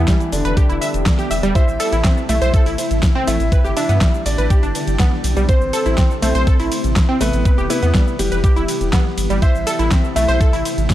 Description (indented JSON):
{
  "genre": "progressive house",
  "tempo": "122 BPM",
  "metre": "4/4",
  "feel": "straight",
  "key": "A minor",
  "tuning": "A4 = 440 Hz",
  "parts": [
    { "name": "warm concert grand piano", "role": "melody", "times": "0.0-10.9 s", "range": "D3 to E5", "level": "-23 LUFS", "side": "left 1 dB", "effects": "digital delay" },
    { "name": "shimmering ambient pad", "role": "sustained chords", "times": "0.0-10.9 s", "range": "C3 to G4", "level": "-26 LUFS", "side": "left 1 dB", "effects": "chorus, built-in reverb, sidechain pumping" },
    { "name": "round analog bass", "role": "bass", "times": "0.0-10.9 s", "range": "E1 to G2", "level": "-19 LUFS", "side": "equal", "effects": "sidechain pumping" },
    { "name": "wide unison pluck", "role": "arpeggios", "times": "0.1-10.6 s", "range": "G3 to E5", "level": "-22 LUFS", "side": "equal", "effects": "sidechain pumping, tape echo" },
    { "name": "big-room dance drum kit", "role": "drums", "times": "0.1-10.9 s", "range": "hi-hat, ride cymbal, shaker, snare drum", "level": "-24 LUFS", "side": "equal", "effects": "overdrive, sidechain pumping on hats, sidechain pumping on perc, sidechain pumping on cymbals" },
    { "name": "electronic kick drum", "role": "drums", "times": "0.1-10.9 s", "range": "none", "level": "-15 LUFS", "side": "equal", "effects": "none" }
  ],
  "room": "digital ambience",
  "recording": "dark, warm production",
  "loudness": "-14 LUFS",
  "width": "side -13 dB against mid",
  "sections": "0.0-10.9 A section",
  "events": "none",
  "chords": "0.0 Em; 1.6 Am; 3.5 G; 5.5 Am; 7.5 Em; 9.4 Am"
}